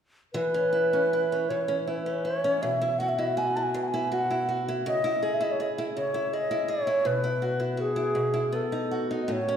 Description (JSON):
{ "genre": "celtic folk, Celtic slow air", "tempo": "80 BPM", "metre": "3/4", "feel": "rubato", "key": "E major", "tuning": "A4 = 443 Hz", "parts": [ { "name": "baroque flute", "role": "melody", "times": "0.3-9.6 s", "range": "G#4 to A5", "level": "-26 LUFS", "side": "equal", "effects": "none" }, { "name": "picked old ladder-braced acoustic guitar", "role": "accompaniment", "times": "0.3-9.6 s", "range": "A2 to G#4", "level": "-29 LUFS", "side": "equal", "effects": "none" } ], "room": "wet recital hall reverb, RT60 1.7 s", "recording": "recorded in a church or concert hall", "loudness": "-25 LUFS", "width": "side -8 dB against mid", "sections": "0.3-9.6 A section", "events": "none", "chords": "0.3 E5; 2.6 Bsus4; 4.9 C#m; 7.0 Bsus4; 8.5 B" }